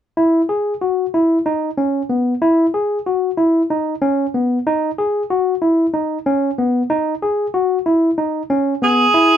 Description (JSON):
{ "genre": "progressive instrumental, progressive", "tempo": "187 BPM (eighths)", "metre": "7/8", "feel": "straight", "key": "C# minor", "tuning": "A4 = 440 Hz", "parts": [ { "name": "barky tine electric piano", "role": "arpeggios", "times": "0.2-9.4 s", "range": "B3 to G#4", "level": "-15 LUFS", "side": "equal", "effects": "none" }, { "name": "bright tenor saxophone", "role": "melody", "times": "8.8-9.4 s", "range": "G#4", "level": "-12 LUFS", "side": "right 2 dB", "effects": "none" } ], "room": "moderate studio ambience, RT60 0.4 s", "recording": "band playing live in one room", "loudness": "-15 LUFS", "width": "side -10 dB against mid", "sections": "0.2-9.1 A section", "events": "none", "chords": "0.2 C#m7", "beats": "| 0.18 0.50 0.82 1.14 1.46 1.78 2.10 | 2.42 2.74 3.06 3.38 3.70 4.02 4.34 | 4.66 4.98 5.30 5.62 5.94 6.26 6.58 | 6.90 7.22 7.54 7.86 8.18 8.50 8.82 | 9.14" }